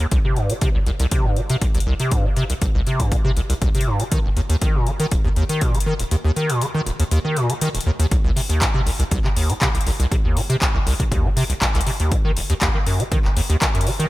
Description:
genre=acid house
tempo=120 BPM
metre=4/4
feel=straight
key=C minor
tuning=A4 = 440 Hz
part: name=acid bass, square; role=riff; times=0.0-14.1 s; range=Eb1 to Eb3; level=-20 LUFS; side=equal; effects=overdrive, ensemble chorus, cassette tape, sidechain pumping
part: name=booming analog drum machine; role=drums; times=0.0-14.1 s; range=handclaps, hi-hat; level=-26 LUFS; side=left 2 dB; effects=none
part: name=electronic kick drum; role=drums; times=0.1-13.7 s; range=none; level=-21 LUFS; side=equal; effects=none
room=little or no reverb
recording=none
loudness=-17 LUFS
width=side -18 dB against mid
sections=0.0-14.1 A section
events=kick drops out 6.1-8.1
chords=none

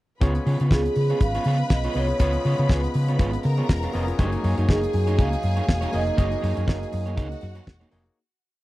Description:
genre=disco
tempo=121 BPM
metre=4/4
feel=swing 56% on 16ths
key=unclear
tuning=A4 = 440 Hz
part: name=clear studio string section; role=second line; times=0.2-8.1 s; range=F#4 to B5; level=-35 LUFS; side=left 2 dB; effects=tape echo
part: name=electric guitar at the edge of break-up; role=accompaniment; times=0.2-8.1 s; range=A#3 to D#5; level=-32 LUFS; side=right 4 dB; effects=none
part: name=overdriven tine electric piano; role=accompaniment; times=0.2-8.2 s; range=G#3 to D#5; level=-32 LUFS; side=left 3 dB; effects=none
part: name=mellow French horn section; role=sustained chords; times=0.2-8.1 s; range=C#3 to E#4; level=-35 LUFS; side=left 1 dB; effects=none
part: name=hollow-body short-scale fingered electric bass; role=bass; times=0.2-8.1 s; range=E1 to C#3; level=-24 LUFS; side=equal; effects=none
part: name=damped 70s drum kit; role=drums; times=0.2-8.2 s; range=hi-hat, kick drum, snare drum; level=-20 LUFS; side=equal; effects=none
part: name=vibraphone with soft mallets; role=melody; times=0.7-7.6 s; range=G#4 to E#5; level=-28 LUFS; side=right 2 dB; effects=none
room=little or no reverb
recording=dry, close 1970s-style studio recording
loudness=-20 LUFS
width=side -17 dB against mid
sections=0.2-8.2 pre-chorus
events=fade-out 6.2-8.2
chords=0.2 C#7; 4.2 F#69

